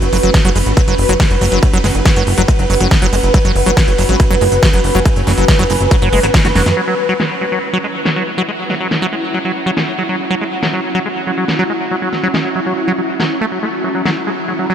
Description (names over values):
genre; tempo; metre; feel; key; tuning
psychedelic trance; 140 BPM; 4/4; straight; unclear; A4 = 440 Hz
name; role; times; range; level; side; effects
swarming drone; sustained chords; 0.0-14.7 s; E4 to B4; -20 LUFS; equal; built-in reverb, analog chorus, sidechain pumping
plucky analog bass; bass; 0.0-6.7 s; F#1 to F#2; -15 LUFS; equal; none
big-room dance drum kit; drums; 0.0-14.1 s; hi-hat, ride cymbal, snare drum; -20 LUFS; equal; low-pass filter on hats, low-pass filter on cymbals, low-pass filter on snare
warbly tape-like pad; texture; 0.0-14.7 s; C#4 to B5; -24 LUFS; right 2 dB; chorus, built-in reverb, sidechain pumping
liquid acid bass; riff; 0.1-14.7 s; F#3 to F#4; -18 LUFS; equal; chorus, auto-pan, sidechain pumping, tape echo
electronic kick drum; drums; 0.3-6.4 s; none; -13 LUFS; equal; none
room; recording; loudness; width
moderate huge ambient reverb, RT60 7.1 s; dreamy mix soaked in reverb; -12 LUFS; side -9 dB against mid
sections
0.0-6.8 A section; 6.8-14.7 B section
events
drop 0.0-6.8; drum fill 6.4-6.8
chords
0.0 F#5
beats
0.34 0.77 1.20 | 1.63 2.06 2.48 2.91 | 3.34 3.77 4.20 4.63 | 5.05 5.48 5.91 6.34 | 6.77 7.20 7.63 8.05 | 8.48 8.91 9.34 9.77 | 10.20 10.63 11.05 11.48 | 11.91 12.34 12.77 13.20 | 13.63 14.05 14.48